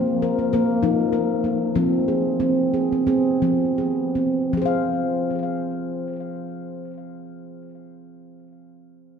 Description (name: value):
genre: world meditative, meditative tuned percussion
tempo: 78-102 BPM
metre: 4/4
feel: swing 54% on 16ths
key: F minor pentatonic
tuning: A4 = 440 Hz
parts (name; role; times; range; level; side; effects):
- handpan; solo; 0.0-7.9 s; F3 to F5; -20 LUFS; equal; tape echo
room: wet concert hall reverb, RT60 1.9 s, studio reverb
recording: none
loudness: -19 LUFS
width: side -7 dB against mid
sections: 0.0-4.5 A section; 4.5-7.6 B section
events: slowing down 0.0-4.5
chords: 0.0 Eb5; 1.8 Fm